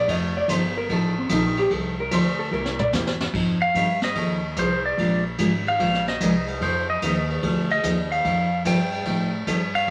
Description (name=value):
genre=country, western swing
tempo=147 BPM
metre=4/4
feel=swing 67% on 8ths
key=F mixolydian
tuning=A4 = 441 Hz
part: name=hollow-body jazz guitar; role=second line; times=0.0-2.9 s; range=C4 to Eb5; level=-27 LUFS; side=equal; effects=none
part: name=upright bass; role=bass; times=0.0-9.9 s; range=F1 to A2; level=-32 LUFS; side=equal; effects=none
part: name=picked steel-string acoustic guitar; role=accompaniment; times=0.1-9.6 s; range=C3 to Bb4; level=-27 LUFS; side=equal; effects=none
part: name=vintage brush drum kit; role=drums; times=0.1-9.9 s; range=crash cymbal, hi-hat, kick drum, ride cymbal, snare drum, toms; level=-30 LUFS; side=equal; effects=none
part: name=pedal steel guitar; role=melody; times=3.6-9.9 s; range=C5 to G5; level=-26 LUFS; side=equal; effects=none
room=wet studio reverb, RT60 0.5 s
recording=vinyl crackle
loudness=-23 LUFS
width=mono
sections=0.0-3.3 A section; 3.3-9.9 A section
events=hollow-body jazz guitar solo 0.0-3.3; drum fill 2.5-3.3; pedal steel guitar solo 3.3-9.9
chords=0.1 F9; 2.5 C7; 3.3 F9; 5.0 Bb9; 6.6 F9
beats=| 0.08 0.49 0.90 1.31 | 1.71 2.12 2.53 2.94 | 3.35 3.76 4.17 4.57 | 4.98 5.39 5.80 6.21 | 6.61 7.02 7.43 7.84 | 8.25 8.65 9.06 9.47 | 9.88